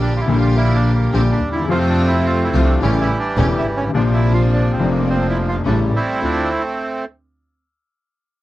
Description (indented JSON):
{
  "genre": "tango",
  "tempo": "106 BPM",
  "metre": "4/4",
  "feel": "rubato",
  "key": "D minor",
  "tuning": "A4 = 441 Hz",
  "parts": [
    { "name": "bandoneon", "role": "melody", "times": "0.0-7.0 s", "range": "E3 to F4", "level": "-21 LUFS", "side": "right 2 dB", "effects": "none" },
    { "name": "warm upright piano", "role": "accompaniment", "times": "0.0-6.5 s", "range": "E1 to G4", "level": "-19 LUFS", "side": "left 4 dB", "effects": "none" },
    { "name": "rich studio string section", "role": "stabs", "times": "0.0-6.5 s", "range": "G3 to G4", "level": "-27 LUFS", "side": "right 2 dB", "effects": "none" },
    { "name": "dark double bass", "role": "bass", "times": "0.0-6.5 s", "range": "E1 to F2", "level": "-18 LUFS", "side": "right 1 dB", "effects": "none" }
  ],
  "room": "little or no reverb",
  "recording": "dry, close 1970s-style studio recording",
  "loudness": "-15 LUFS",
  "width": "side -15 dB against mid",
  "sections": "0.0-6.2 A section; 6.2-8.4 B section",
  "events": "none",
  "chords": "0.0 Gm/Bb; 1.7 F; 2.8 A7; 4.0 Bbadd9; 5.7 A7; 6.2 Dm7"
}